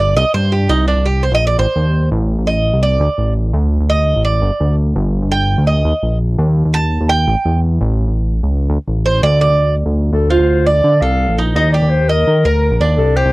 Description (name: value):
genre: latin, Cuban son and guajira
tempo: 169 BPM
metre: 4/4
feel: straight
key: unclear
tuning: A4 = 441 Hz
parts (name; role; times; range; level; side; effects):
- Cuban tres; arpeggios; 0.0-13.3 s; D4 to A5; -16 LUFS; right 2 dB; none
- fat analog bass; bass; 0.0-13.3 s; G1 to Eb3; -14 LUFS; equal; none
- warm clarinet; melody; 10.1-13.3 s; A4 to F5; -16 LUFS; left 2 dB; none
room: light reverb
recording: dry, close 1970s-style studio recording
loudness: -12 LUFS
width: side -21 dB against mid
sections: 0.0-10.1 A section; 10.1-13.3 B section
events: Cuban tres solo 0.0-10.1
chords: 0.2 C5; 1.6 Adim; 3.0 D5; 4.4 G5; 5.9 Eb5; 7.3 A7; 8.7 D5; 10.1 Dm7; 11.6 Ebmaj7